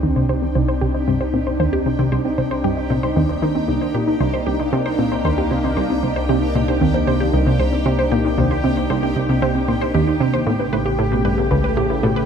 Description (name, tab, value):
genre	ambient, sequencer-driven space music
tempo	115 BPM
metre	4/4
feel	straight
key	C dorian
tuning	A4 = 441 Hz
part	sweeping resonant pad	sustained chords	0.0-12.3 s	C#3 to G4	-22 LUFS	equal	chorus, shimmer reverb
part	wide unison pluck	arpeggios	0.0-12.2 s	B2 to C5	-22 LUFS	left 1 dB	auto-pan, tape echo, shimmer reverb
part	analog pluck	riff	0.0-12.2 s	C2 to Eb3	-21 LUFS	right 2 dB	chorus, tape echo
part	round analog bass	bass	0.0-12.3 s	A1 to C2	-26 LUFS	left 1 dB	none
part	bubbling stepped-filter texture	texture	0.0-12.3 s	G4 to G5	-31 LUFS	left 1 dB	chorus, built-in reverb, shimmer reverb
room	moderate plate reverb, RT60 2.9 s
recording	none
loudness	-16 LUFS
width	side -7 dB against mid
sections	0.0-12.3 A section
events	fade-in on synth texture 0.0-12.3; filter sweep on synth arpeggio sound 0.0-12.3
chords	0.0 Cmadd9; 10.5 A7